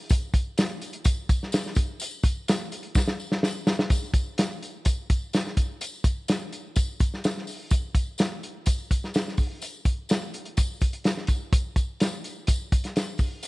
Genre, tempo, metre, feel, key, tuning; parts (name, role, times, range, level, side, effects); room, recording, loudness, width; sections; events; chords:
soul; 126 BPM; 4/4; straight
warm soul drum kit; drums; 0.1-13.5 s; hi-hat, kick drum, snare drum; -23 LUFS; equal
tambourine; percussion; 0.1-13.5 s; -39 LUFS; left 2 dB
little or no reverb; nothing above 10.9 kHz; -24 LUFS; side -21 dB against mid
0.0-3.9 A section; 3.9-13.5 B section
drum fill 3.0-3.9